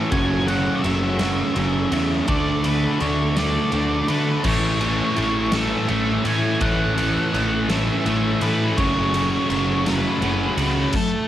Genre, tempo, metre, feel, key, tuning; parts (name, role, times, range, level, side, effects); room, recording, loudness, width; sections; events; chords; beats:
quiet-loud alternative rock; 56 BPM (dotted quarters); 6/8; straight; A4 = 440 Hz
octave-fuzz lead guitar; melody; 0.0-11.3 s; A4 to G#5; -27 LUFS; left 1 dB; distortion, cassette tape
distorted electric guitar; riff; 0.0-11.3 s; F#2 to D4; -23 LUFS; right 4 dB; distortion, cassette tape
thick fuzz guitar; riff; 0.0-10.9 s; A2 to F#4; -26 LUFS; left 8 dB; distortion, cassette tape
fuzz picked electric bass; bass; 0.0-10.9 s; F#1 to D3; -25 LUFS; equal; overdrive
huge arena drum kit; drums; 0.1-11.1 s; crash cymbal, kick drum, ride cymbal, snare drum; -27 LUFS; equal; cassette tape
scooped high-gain guitar; riff; 4.4-11.3 s; F#2 to A3; -27 LUFS; equal; distortion, cassette tape
light reverb; home recording on cassette; -18 LUFS; side -12 dB against mid
0.0-11.3 A section
0.1 F#m; 2.3 D; 4.5 A; 8.8 F#m
| 0.12 1.20 | 2.29 3.37 | 4.45 5.54 | 6.62 7.70 | 8.78 9.86 | 10.94